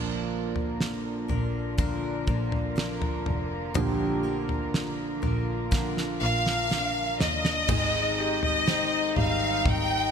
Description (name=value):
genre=pop ballad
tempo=61 BPM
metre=4/4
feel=straight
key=unclear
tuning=A4 = 439 Hz
part: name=mellow French horn section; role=second line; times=0.0-10.1 s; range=D4 to G4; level=-34 LUFS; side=left 6 dB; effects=none
part: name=warm grand piano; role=accompaniment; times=0.0-10.1 s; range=D3 to C5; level=-34 LUFS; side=right 5 dB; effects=analog chorus
part: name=warm studio string section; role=sustained chords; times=0.0-10.1 s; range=D3 to Bb4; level=-36 LUFS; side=right 1 dB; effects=none
part: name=picked steel-string acoustic guitar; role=arpeggios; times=0.0-10.1 s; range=Bb2 to Bb4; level=-37 LUFS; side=left 4 dB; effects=wide subtle chorus
part: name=rich double bass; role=bass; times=0.0-10.1 s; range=F1 to Eb2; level=-32 LUFS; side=equal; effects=none
part: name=damped 70s drum kit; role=drums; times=0.6-9.9 s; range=crash cymbal, kick drum, snare drum, toms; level=-30 LUFS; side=equal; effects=none
part: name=clear studio violin section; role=melody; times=6.2-10.1 s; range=Eb5 to G5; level=-26 LUFS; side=equal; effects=none
room=moderate lush hall reverb, RT60 2.7 s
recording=bright 1980s-style digital production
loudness=-24 LUFS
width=side -7 dB against mid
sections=0.0-7.7 A section; 7.7-10.1 B section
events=grand piano solo 0.0-7.7; drum fill 5.7-7.7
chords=0.0 Bb; 7.7 Abmaj7